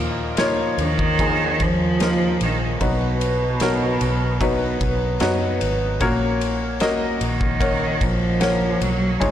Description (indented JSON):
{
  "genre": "pop ballad",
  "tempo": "75 BPM",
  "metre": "4/4",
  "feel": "straight",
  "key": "unclear",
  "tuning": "A4 = 440 Hz",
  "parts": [
    { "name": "warm baby grand piano", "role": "accompaniment", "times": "0.0-9.3 s", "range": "Ab2 to Gb5", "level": "-22 LUFS", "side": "left 2 dB", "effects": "none" },
    { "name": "vintage muted fingered electric bass", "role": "bass", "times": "0.0-9.3 s", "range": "Ab1 to F#2", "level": "-26 LUFS", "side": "equal", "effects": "none" },
    { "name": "loose indie drum kit", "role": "drums", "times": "0.4-9.3 s", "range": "kick drum, ride cymbal, snare drum", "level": "-26 LUFS", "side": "equal", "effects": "soft clipping on snare" },
    { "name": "warm cello", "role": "melody", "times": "0.8-9.3 s", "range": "B2 to Ab3", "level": "-22 LUFS", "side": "right 2 dB", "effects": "tape echo" }
  ],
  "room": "light reverb",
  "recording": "blown-out, overdriven recording, overdrive, lossy compression artefacts",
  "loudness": "-18 LUFS",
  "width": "side -10 dB against mid",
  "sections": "0.0-9.3 A section",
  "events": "none",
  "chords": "0.0 Ebsus2; 2.8 B; 6.0 Gb/Bb"
}